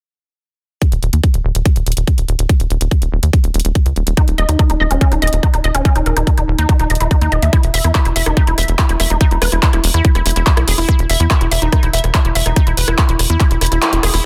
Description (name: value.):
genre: psychedelic trance.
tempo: 143 BPM.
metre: 4/4.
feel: straight.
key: unclear.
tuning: A4 = 439 Hz.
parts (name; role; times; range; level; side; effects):
drum and bass drum kit; drums; 0.8-14.2 s; handclaps, hi-hat, rim click; -22 LUFS; equal; overdrive.
electronic kick drum; drums; 0.8-13.5 s; none; -15 LUFS; equal; overdrive.
tight sequencer bass; bass; 0.9-14.2 s; Eb1 to E2; -18 LUFS; equal; none.
woody wave-folded pluck; riff; 4.2-14.2 s; Db4 to Fb5; -22 LUFS; equal; chorus, sidechain pumping, tape echo.
room: digital ambience.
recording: dense, heavily limited modern master.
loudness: -14 LUFS.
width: mono.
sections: 0.8-14.2 A section.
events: kick drops out 13.8-14.2; band accent 13.8.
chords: 0.8 Eb5; 7.5 E5.